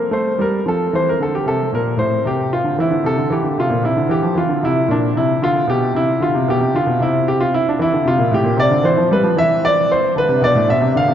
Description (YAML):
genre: classical, baroque-style suite movement for grand piano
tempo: 76 BPM (dotted quarters)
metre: 12/8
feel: rubato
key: unclear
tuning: A4 = 440 Hz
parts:
  - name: clear concert grand piano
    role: solo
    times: 0.0-11.1 s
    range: A2 to F5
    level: -14 LUFS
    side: equal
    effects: none
room: wet cathedral reverb, RT60 6.8 s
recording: dark, warm production, nothing above 7.9 kHz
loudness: -14 LUFS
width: side -9 dB against mid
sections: 0.0-11.1 A section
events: none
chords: 0.0 C5; 0.7 F; 2.2 C; 5.4 Bdim; 7.0 C; 10.1 G (rootless)